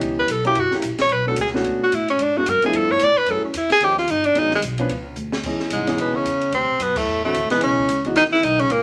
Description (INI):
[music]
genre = jazz, small-group swing and bop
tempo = 221 BPM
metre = 4/4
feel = swing 59% on 8ths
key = F# minor, C# minor from 5.4 s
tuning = A4 = 439 Hz
[part]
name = dark baby grand piano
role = accompaniment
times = 0.0-8.2 s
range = E3 to B4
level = -27 LUFS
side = equal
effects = none
[part]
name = upright bass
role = bass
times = 0.0-8.8 s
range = F#1 to A2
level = -33 LUFS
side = equal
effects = none
[part]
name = open jazz drum kit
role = drums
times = 0.0-8.8 s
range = crash cymbal, hi-hat, kick drum, ride cymbal, snare drum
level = -34 LUFS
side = equal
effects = none
[part]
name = clear tenor saxophone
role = melody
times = 0.2-8.8 s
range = G#3 to D5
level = -20 LUFS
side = equal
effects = none
[part]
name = warm baritone saxophone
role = second line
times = 5.7-8.8 s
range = G#2 to E3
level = -30 LUFS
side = equal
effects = none
[sound]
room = moderate club reverb, RT60 0.8 s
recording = none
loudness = -20 LUFS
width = mono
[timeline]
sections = 0.0-5.4 A section; 5.4-8.8 B section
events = tenor saxophone solo 0.0-5.4; drum fill 5.2; band accent 6.9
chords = 0.0 C#m7b5; 0.6 F#7b9; 1.1 Bm7; 2.2 G#m7b5; 2.7 G9; 3.3 F#m7; 3.8 D#7; 4.4 G#m7; 4.9 N.C.; 5.4 C#m7; 6.5 D9; 7.6 Emaj7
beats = | 0.02 0.29 0.56 0.83 | 1.10 1.37 1.65 1.92 | 2.19 2.46 2.73 3.00 | 3.27 3.54 3.81 4.09 | 4.36 4.63 4.90 5.17 | 5.44 5.71 5.99 6.26 | 6.53 6.80 7.07 7.34 | 7.61 7.88 8.15 8.43 | 8.70